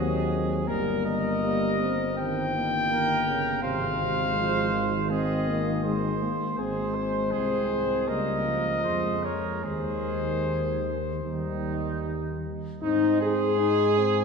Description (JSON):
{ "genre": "classical, brass quintet", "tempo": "75-82 BPM", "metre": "4/4", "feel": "rubato", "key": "Ab major", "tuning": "A4 = 440 Hz", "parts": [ { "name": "warm cornet", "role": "melody", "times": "0.0-14.2 s", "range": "Ab4 to C6", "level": "-30 LUFS", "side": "left 3 dB", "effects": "none" }, { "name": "clear trumpet", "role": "second line", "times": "0.0-14.2 s", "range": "Eb4 to C5", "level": "-33 LUFS", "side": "right 6 dB", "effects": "none" }, { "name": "breathy trombone", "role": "accompaniment", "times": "0.0-14.2 s", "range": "C3 to Eb4", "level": "-32 LUFS", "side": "right 4 dB", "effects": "none" }, { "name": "mellow French horn", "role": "accompaniment", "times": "0.0-14.2 s", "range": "G3 to Ab4", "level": "-29 LUFS", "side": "left 3 dB", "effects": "none" }, { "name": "mellow bass trombone", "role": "bass", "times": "0.0-14.2 s", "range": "G1 to Ab2", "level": "-31 LUFS", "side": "equal", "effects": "none" } ], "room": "wet church reverb, RT60 2.9 s", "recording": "heard from further back in the room", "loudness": "-24 LUFS", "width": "side -5 dB against mid", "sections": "0.0-12.8 A section; 12.8-14.2 B section", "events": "none", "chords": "0.0 Ebm; 0.7 Eb7/G; 3.6 Ab; 8.1 Db; 9.6 Ab/Eb; 11.2 Eb; 12.8 Ab" }